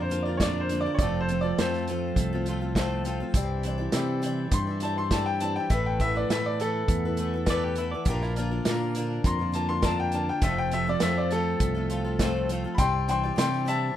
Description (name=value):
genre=folk rock and heartland rock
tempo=102 BPM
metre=4/4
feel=straight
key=unclear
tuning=A4 = 441 Hz
part: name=clear baby grand piano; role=melody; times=0.0-14.0 s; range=A4 to C6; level=-29 LUFS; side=left 2 dB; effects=slapback echo
part: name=picked acoustic archtop guitar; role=accompaniment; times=0.0-14.0 s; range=F2 to D5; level=-33 LUFS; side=left 4 dB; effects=none
part: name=pedal harmonium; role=sustained chords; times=0.0-14.0 s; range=E3 to C5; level=-42 LUFS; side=equal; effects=none
part: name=twelve-string electric guitar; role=riff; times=0.0-14.0 s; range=F2 to F4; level=-33 LUFS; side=right 2 dB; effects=wide subtle chorus
part: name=fingered electric bass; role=bass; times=0.0-13.9 s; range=F1 to C3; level=-30 LUFS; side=equal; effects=none
part: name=natural country drum kit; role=drums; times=0.1-13.8 s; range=hi-hat, kick drum, snare drum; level=-28 LUFS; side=equal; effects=none
part: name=pedal steel guitar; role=second line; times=7.5-9.1 s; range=E4 to D5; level=-36 LUFS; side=right 2 dB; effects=none
room=moderate studio ambience, RT60 0.5 s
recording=rough home demo mix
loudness=-24 LUFS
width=side -11 dB against mid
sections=0.0-14.0 A section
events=grand piano solo 0.0-14.0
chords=0.0 Bb; 1.0 F; 3.4 Cadd9; 5.7 Asus2; 8.1 Bb; 10.4 F; 12.8 Cadd9